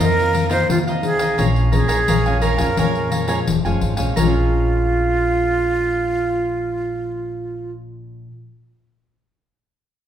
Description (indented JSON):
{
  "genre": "samba and choro",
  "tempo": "86 BPM",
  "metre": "4/4",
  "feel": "straight",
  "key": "Bb minor",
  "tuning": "A4 = 440 Hz",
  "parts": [
    { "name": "breathy concert flute", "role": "melody", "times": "0.0-7.7 s", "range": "F4 to C5", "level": "-20 LUFS", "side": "right 2 dB", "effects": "none" },
    { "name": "cavaquinho", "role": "accompaniment", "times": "0.0-8.3 s", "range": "F4 to Ab5", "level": "-24 LUFS", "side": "right 2 dB", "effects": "none" },
    { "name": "nylon-string guitar", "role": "accompaniment", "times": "0.0-8.4 s", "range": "F2 to Db4", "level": "-26 LUFS", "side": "left 2 dB", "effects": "none" },
    { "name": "upright bass", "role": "bass", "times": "0.0-8.3 s", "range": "Eb1 to F2", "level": "-22 LUFS", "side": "equal", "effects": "none" },
    { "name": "pandeiro", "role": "percussion", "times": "0.0-4.3 s", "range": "none", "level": "-23 LUFS", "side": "left 5 dB", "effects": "none" }
  ],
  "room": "wet large studio reverb, RT60 1.2 s",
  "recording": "band playing live in one room",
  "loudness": "-16 LUFS",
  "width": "side -10 dB against mid",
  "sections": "0.0-4.2 A section; 4.2-7.0 B section",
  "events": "none",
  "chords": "0.0 F7sus4; 1.4 Bbm7",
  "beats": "0.00 0.69 | 1.39 2.08 2.78 3.47 | 4.17 4.86 5.56 6.26"
}